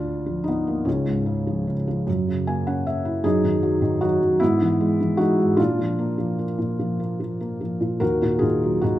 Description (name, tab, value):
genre	classical, lyrical solo piano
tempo	50 BPM (dotted quarters)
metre	6/8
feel	rubato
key	Eb minor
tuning	A4 = 440 Hz
part	felt-muted upright piano	solo	0.0-9.0 s	Db2 to Ab5	-20 LUFS	equal	none
room	moderate recital hall reverb, RT60 1.4 s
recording	minimal, uncompressed stereo recording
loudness	-20 LUFS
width	side -14 dB against mid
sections	0.0-9.0 A section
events	felt piano fill 2.1-3.3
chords	0.0 Bb/D; 0.9 Db; 2.1 Gb7; 3.3 Ebmadd11/Gb; 4.4 E/G#; 5.6 Bb; 8.0 Ebm